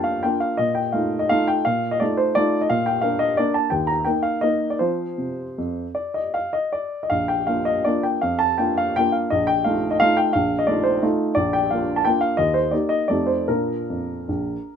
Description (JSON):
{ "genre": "classical, piano waltz", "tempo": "147-185 BPM", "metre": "3/4", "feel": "rubato", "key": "Bb major", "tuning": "A4 = 439 Hz", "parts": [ { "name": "warm upright piano", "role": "solo", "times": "0.0-14.8 s", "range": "Bb1 to Bb5", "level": "-19 LUFS", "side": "equal", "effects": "none" } ], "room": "light reverb", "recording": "minimal, uncompressed stereo recording", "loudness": "-19 LUFS", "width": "side -8 dB against mid", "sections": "0.0-14.8 A section", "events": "none", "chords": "0.0 Bb; 0.6 F7/Bb; 2.7 Bb; 3.7 Eb5; 4.8 F5; 7.1 Bb; 9.3 F7/Bb; 11.4 Bb; 12.4 Eb; 13.1 F13; 13.5 Bb" }